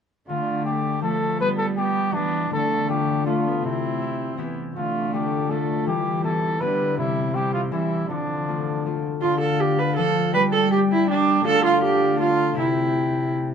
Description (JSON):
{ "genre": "classical, renaissance-style consort dance", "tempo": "161 BPM", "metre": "3/4", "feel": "straight", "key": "D dorian", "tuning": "A4 = 441 Hz", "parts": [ { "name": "mellow cornet", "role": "melody", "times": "0.3-13.5 s", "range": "D4 to G5", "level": "-26 LUFS", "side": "left 1 dB", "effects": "none" }, { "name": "warm viola", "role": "second line", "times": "0.3-13.3 s", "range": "F3 to B4", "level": "-24 LUFS", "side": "right 4 dB", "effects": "none" }, { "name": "concert harp", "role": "accompaniment", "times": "0.3-13.5 s", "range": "C3 to G4", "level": "-26 LUFS", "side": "left 8 dB", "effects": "none" }, { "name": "dark cello", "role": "bass", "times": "0.3-13.5 s", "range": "C3 to G3", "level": "-27 LUFS", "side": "right 2 dB", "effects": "none" } ], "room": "moderate studio ambience, RT60 0.5 s", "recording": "dark, warm production", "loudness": "-20 LUFS", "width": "side -7 dB against mid", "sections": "0.3-9.2 A section; 9.2-13.5 A section", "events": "none", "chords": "0.3 Dm; 1.4 G; 2.5 Dm; 3.6 C; 4.7 Dm; 5.9 Em; 7.0 C; 8.1 Dm; 10.3 G5; 11.5 Dm; 12.6 C", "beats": "| 0.28 0.66 1.03 | 1.40 1.77 2.14 | 2.51 2.88 3.25 | 3.63 4.00 4.38 | 4.75 5.12 5.49 | 5.86 6.23 6.60 | 6.97 7.34 7.72 | 8.09 8.47 8.85 | 9.22 9.60 9.97 | 10.34 10.71 11.08 | 11.45 11.82 12.20 | 12.57 12.95 13.32" }